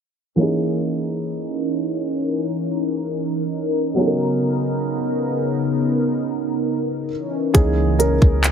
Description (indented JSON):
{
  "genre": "contemporary R&B",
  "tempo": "67 BPM",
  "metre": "4/4",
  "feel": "straight",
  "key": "C# dorian",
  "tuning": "A4 = 440 Hz",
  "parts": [
    { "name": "felt-muted upright piano", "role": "accompaniment", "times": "0.4-8.5 s", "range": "E3 to A#4", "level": "-23 LUFS", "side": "right 1 dB", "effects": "none" },
    { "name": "warm analog pad", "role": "sustained chords", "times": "0.4-8.5 s", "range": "C#3 to A#4", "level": "-22 LUFS", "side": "equal", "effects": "chorus, phaser, sidechain pumping" },
    { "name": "clean 808-style bass", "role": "bass", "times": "7.5-8.5 s", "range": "C#2", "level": "-18 LUFS", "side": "equal", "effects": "none" },
    { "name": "trap drum kit", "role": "drums", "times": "7.5-8.5 s", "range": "handclaps, hi-hat, kick drum", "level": "-14 LUFS", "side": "equal", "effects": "none" }
  ],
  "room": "light reverb",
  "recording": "low-pass filter",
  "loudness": "-18 LUFS",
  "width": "side -8 dB against mid",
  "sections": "0.4-7.5 A section",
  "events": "filter sweep 0.4-7.5",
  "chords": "0.4 C#m69; 4.0 Bmaj9; 7.1 C#m69"
}